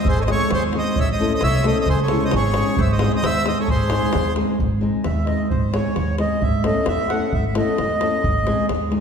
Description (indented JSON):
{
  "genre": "balkan folk, Balkan wedding band",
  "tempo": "132 BPM",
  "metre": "2/4",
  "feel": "straight",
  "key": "unclear",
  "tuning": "A4 = 439 Hz",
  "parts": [
    { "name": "accordion", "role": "melody", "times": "0.0-4.3 s", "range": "B#4 to E5", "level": "-24 LUFS", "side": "equal", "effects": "none" },
    { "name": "accordion", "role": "second line", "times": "0.0-8.7 s", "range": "G#4 to F#5", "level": "-25 LUFS", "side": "right 1 dB", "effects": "none" },
    { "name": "nylon-string guitar", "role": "accompaniment", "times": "0.0-9.0 s", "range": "G#3 to A4", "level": "-23 LUFS", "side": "left 1 dB", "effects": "none" },
    { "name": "davul", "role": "percussion", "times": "0.0-9.0 s", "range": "none", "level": "-25 LUFS", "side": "equal", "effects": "none" },
    { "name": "upright bass", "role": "bass", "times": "0.1-9.0 s", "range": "G#1 to E2", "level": "-23 LUFS", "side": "right 1 dB", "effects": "none" }
  ],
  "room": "wet concert hall reverb, RT60 2.0 s",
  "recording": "heard from further back in the room",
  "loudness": "-17 LUFS",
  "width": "side -6 dB against mid",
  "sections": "0.0-4.6 A section; 4.6-9.0 B section",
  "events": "accordion solo 4.6-9.0",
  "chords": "0.0 G#; 1.0 A; 1.9 C#m; 2.8 G#; 6.4 A/G#; 8.2 G#"
}